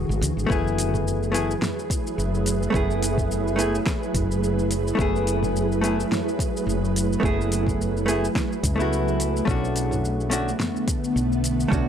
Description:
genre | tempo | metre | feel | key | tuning
sunset chillout | 107 BPM | 4/4 | swing 55% on 16ths | F# minor | A4 = 439 Hz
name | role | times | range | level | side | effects
ethereal airy pad | sustained chords | 0.0-11.9 s | D3 to B4 | -26 LUFS | right 1 dB | ensemble chorus, built-in reverb
woody fretless electric bass | bass | 0.0-11.9 s | F#1 to D2 | -26 LUFS | equal | tube saturation
deep house drum kit | drums | 0.1-11.8 s | hi-hat, shaker, snare drum, toms | -30 LUFS | equal | none
vintage hollow-body jazz guitar | accompaniment | 0.5-11.9 s | A3 to G#4 | -26 LUFS | moving between left 4 dB and right 4 dB | auto-pan, analog delay
electronic kick drum | drums | 0.5-11.8 s | none | -26 LUFS | equal | none
room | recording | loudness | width
light reverb | dry, gritty hardware recording | -21 LUFS | side -8 dB against mid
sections
0.5-11.9 A section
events
none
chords
0.0 E9; 0.5 F#m11; 9.5 Bm9

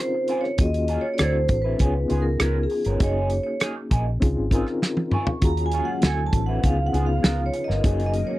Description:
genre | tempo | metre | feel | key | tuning
lush 1970s-style soul | 99 BPM | 4/4 | straight | unclear | A4 = 440 Hz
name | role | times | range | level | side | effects
vibraphone with medium hard mallets | melody | 0.0-8.4 s | Ab4 to Db6 | -27 LUFS | right 1 dB | none
reed electric piano | accompaniment | 0.0-8.4 s | Bb3 to Bb4 | -28 LUFS | left 2 dB | fast tremolo
electric guitar through a small old amp | riff | 0.0-8.3 s | F3 to Cb5 | -33 LUFS | right 2 dB | wah
warm soul drum kit | drums | 0.3-8.3 s | hi-hat, kick drum, rim click, snare drum, toms | -22 LUFS | equal | none
vintage muted fingered electric bass | bass | 0.6-8.2 s | Gb1 to Eb2 | -24 LUFS | equal | none
string machine, full ensemble | sustained chords | 5.6-8.4 s | Db3 to F5 | -34 LUFS | left 1 dB | ensemble chorus
room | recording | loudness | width
little or no reverb | dry, close 1970s-style studio recording | -20 LUFS | side -16 dB against mid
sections
0.0-8.4 A section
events
vibraphone solo 0.0-8.4; drum fill 4.8-5.4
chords
0.0 Dbmaj7; 0.6 Ebm11; 1.2 D9; 1.8 Db7; 3.0 Gb69; 4.2 Dbmaj7; 5.4 Ebm11; 6.0 D9; 6.6 Db7; 7.8 Gb69

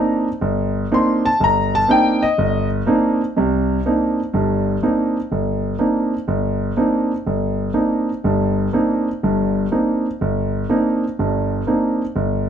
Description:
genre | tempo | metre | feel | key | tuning
jazz | 123 BPM | 4/4 | swing 67% on 8ths | C minor | A4 = 439 Hz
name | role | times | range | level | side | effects
warm concert grand piano | solo | 0.0-12.5 s | G1 to C6 | -16 LUFS | right 1 dB | none
room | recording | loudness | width
moderate studio reverb, RT60 0.8 s | dark, warm production | -16 LUFS | side -8 dB against mid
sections
0.0-3.3 A section; 3.3-12.5 B section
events
none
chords
0.0 Cm9

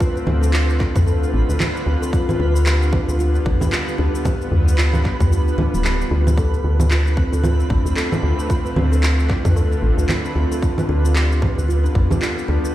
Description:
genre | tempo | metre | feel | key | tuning
organic downtempo | 113 BPM | 4/4 | swing 58% on 16ths | unclear | A4 = 440 Hz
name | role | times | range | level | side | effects
bowed-like drone | sustained chords | 0.0-12.7 s | D3 to F4 | -27 LUFS | left 1 dB | built-in reverb, sidechain pumping
kalimba | arpeggios | 0.0-12.6 s | B3 to A4 | -25 LUFS | equal | digital delay
electronic cabasa, congas and handclaps | drums | 0.0-12.7 s | none | -24 LUFS | right 1 dB | overdrive
electronic kick drum | drums | 0.0-12.1 s | none | -20 LUFS | equal | overdrive
twinkling granular texture | texture | 0.0-12.7 s | B4 | -32 LUFS | right 3 dB | built-in reverb
woody FM bass | bass | 0.3-12.6 s | D1 to D2 | -17 LUFS | equal | sidechain pumping
udu | percussion | 1.0-12.1 s | none | -22 LUFS | left 1 dB | none
room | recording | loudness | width
light reverb | played on a big sound system in a bare room, stone room reverb | -16 LUFS | side -14 dB against mid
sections
0.0-12.7 A section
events
none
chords
0.0 Dm7; 2.1 G7; 6.4 Dm7; 10.6 G7/D

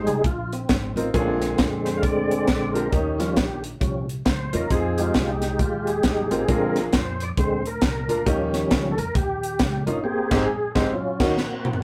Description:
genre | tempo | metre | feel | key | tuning
uptempo gospel | 135 BPM | 4/4 | swing 61% on 8ths | unclear | A4 = 440 Hz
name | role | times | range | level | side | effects
tonewheel organ | sustained chords | 0.0-11.8 s | D3 to F5 | -28 LUFS | equal | fast rotary speaker, chorus vibrato
upright bass | bass | 0.0-11.3 s | G1 to F2 | -32 LUFS | equal | none
crisp fusion drum kit | drums | 0.1-11.8 s | crash cymbal, hi-hat, kick drum, snare drum, toms | -27 LUFS | equal | none
bright upright piano | accompaniment | 1.0-11.3 s | Ab2 to Bb4 | -28 LUFS | equal | none
room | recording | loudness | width
moderate studio ambience, RT60 0.5 s | rough rehearsal-room recording | -23 LUFS | mono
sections
0.0-11.8 A section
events
tonewheel organ solo 0.0-11.8; band accent 10.0-11.8; drum fill 11.4-11.8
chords
0.0 Fm7; 1.1 Bb7; 2.9 Eb7; 4.7 Fm7; 6.5 Bb7; 8.3 Eb7; 10.0 Abmaj7; 10.9 Ebm7; 11.4 Bbsus2

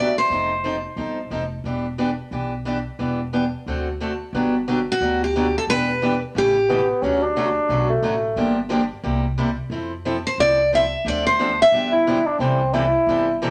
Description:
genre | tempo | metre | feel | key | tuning
acoustic string swing (jazz manouche) | 179 BPM | 4/4 | swing 60% on 8ths | unclear | A4 = 443 Hz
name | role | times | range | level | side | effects
picked steel-string acoustic guitar | melody | 0.0-1.5, 4.9-6.9, 10.3-11.9 s | F#4 to E5 | -21 LUFS | equal | none
picked steel-string acoustic guitar | accompaniment | 0.0-13.5 s | C3 to A4 | -26 LUFS | equal | none
upright bass | bass | 0.0-13.5 s | E1 to F2 | -31 LUFS | equal | none
mellow bassoon | second line | 6.7-8.5, 11.9-13.4 s | A3 to E4 | -22 LUFS | equal | none
room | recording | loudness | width
wet studio reverb, RT60 0.7 s | none | -21 LUFS | mono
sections
0.0-4.3 A section; 4.3-13.5 B section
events
none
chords
0.3 F9; 1.6 Em7; 3.7 D7; 4.3 Gmaj7; 5.7 Em7; 6.4 A7; 7.0 Dmaj7; 8.4 Gm7; 9.0 C7; 9.7 Fmaj7; 11.1 Dm7; 11.7 G7; 12.4 C6

